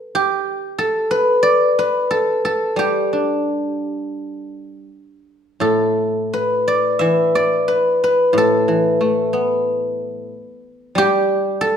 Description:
chinese traditional, Chinese solo plucked strings; 80-94 BPM; 4/4; rubato; A4 = 440 Hz
guzheng; solo; 0.0-11.8 s; A2 to E5; -16 LUFS; equal
moderate recital hall reverb, RT60 1.3 s; minimal, uncompressed stereo recording; -15 LUFS; side -8 dB against mid
0.0-11.8 A section

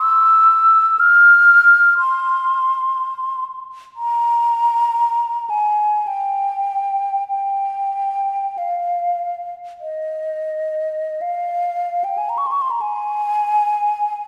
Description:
classical, free, expressive piece for unaccompanied flute; 37-63 BPM; 3/4; rubato; F minor; A4 = 441 Hz
mellow hollow concert flute; solo; 0.0-14.3 s; Eb5 to F6; -17 LUFS; equal
wet concert hall reverb, RT60 1.9 s; heard from further back in the room; -17 LUFS; mono
0.0-11.2 A section; 11.2-14.3 A section

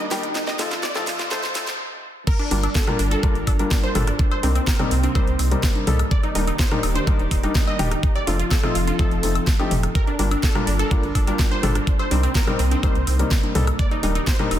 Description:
progressive house; 125 BPM; 4/4; straight; G minor; A4 = 437 Hz
airy breathy pad; sustained chords; 0.0-14.6 s; C3 to D5; -32 LUFS; equal; chorus, sidechain pumping
wide unison pluck; arpeggios; 0.0-14.6 s; C4 to Eb5; -27 LUFS; right 1 dB; vintage 12-bit sampler grit, sidechain pumping, tape echo
felt-muted upright piano; stabs; 0.0-14.5 s; F3 to Bb4; -26 LUFS; left 3 dB; sidechain pumping, tape echo
saturated sub bass; bass; 0.1-14.6 s; Eb1 to C2; -22 LUFS; equal; sidechain pumping, high-pass filter
house drum kit; drums; 0.1-14.6 s; crash cymbal, hi-hat, rim click, snare drum; -28 LUFS; right 1 dB; sidechain pumping on hats, sidechain pumping on cymbals
electronic kick drum; drums; 2.3-14.4 s; -20 LUFS; equal
electronic woodblock, congas and toms; percussion; 2.3-14.6 s; -30 LUFS; left 1 dB; sidechain pumping on perc, sidechain pumping on toms
light reverb, digital ambience; dense, heavily limited modern master, high-pass filter; -18 LUFS; side -11 dB against mid
0.0-2.3 A section; 2.3-14.6 B section
build-up 0.0-2.3; drum fill 0.0-1.8; filter sweep on synth pluck 0.0-2.3; stop 1.8-2.3; drop 2.3-14.6
0.4 F7; 2.3 Gm7; 4.2 Cm7; 6.1 Ebmaj7; 8.0 F7; 10.0 Gm7; 11.9 Cm7; 13.8 Ebmaj7

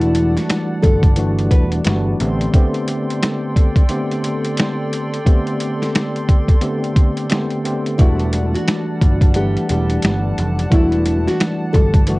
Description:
hip hop, boom-bap hip-hop; 88 BPM; 4/4; swing 61% on 16ths; E minor; A4 = 440 Hz
nylon-string guitar; melody; 0.0-1.7, 8.0-11.9 s; E4 to B4; -22 LUFS; left 1 dB; analog delay
tine electric piano; accompaniment; 0.0-12.2 s; D3 to F#5; -21 LUFS; equal; medium stereo tremolo, cassette tape
hollow soft pad; sustained chords; 0.0-12.2 s; G3 to C6; -28 LUFS; equal; chorus, cassette tape
overdriven picked electric bass; bass; 0.0-2.5, 8.0-12.2 s; E1 to A1; -19 LUFS; equal
boom bap sampler-style drum kit; drums; 0.0-12.2 s; hi-hat, kick drum, snare drum; -15 LUFS; equal; cassette tape
little or no reverb; home recording on cassette, nothing above 10.7 kHz; -14 LUFS; side -22 dB against mid
0.0-12.2 A section
0.0 Em11; 2.2 Am11; 8.0 Em11

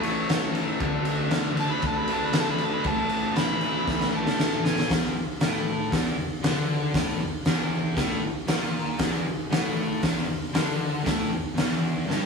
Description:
garage rock duo or trio; 117 BPM; 4/4; straight; A4 = 440 Hz
clear harmonica; melody; 0.0-4.9 s; C#5 to B5; -30 LUFS; right 2 dB; overdrive
fuzz guitar; riff; 0.0-12.3 s; E2 to D4; -27 LUFS; left 1 dB; distortion
oversized low-tuned drum kit; drums; 0.0-12.2 s; hi-hat, kick drum, ride cymbal, snare drum; -26 LUFS; left 1 dB
wet studio reverb, RT60 0.6 s; rough rehearsal-room recording, studio reverb; -23 LUFS; side -5 dB against mid
0.0-4.9 A section; 4.9-12.3 B section
drum fill 3.9-4.9, 12.1
0.0 A; 0.8 D5; 2.9 A5; 4.9 E7(no3)

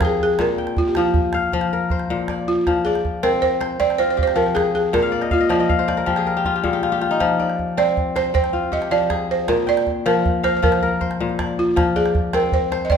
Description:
west african traditional, West African string and xylophone music; 106 BPM (dotted quarters); 12/8; straight; A4 = 440 Hz
balafon; melody; 0.0-13.0 s; F4 to Eb5; -20 LUFS; right 3 dB
kora; arpeggios; 0.0-13.0 s; Bb2 to G5; -20 LUFS; left 4 dB
calabash; percussion; 0.0-13.0 s; -26 LUFS; right 2 dB
moderate recital hall reverb, RT60 1.6 s; minimal, uncompressed stereo recording; -17 LUFS; side -7 dB against mid
0.0-13.0 A section
kora fill 5.0-7.2; drum fill 6.5-7.2
0.4 Bb; 2.7 Fm; 4.9 Bb5; 7.2 Fm; 9.5 Bb; 11.8 Fm

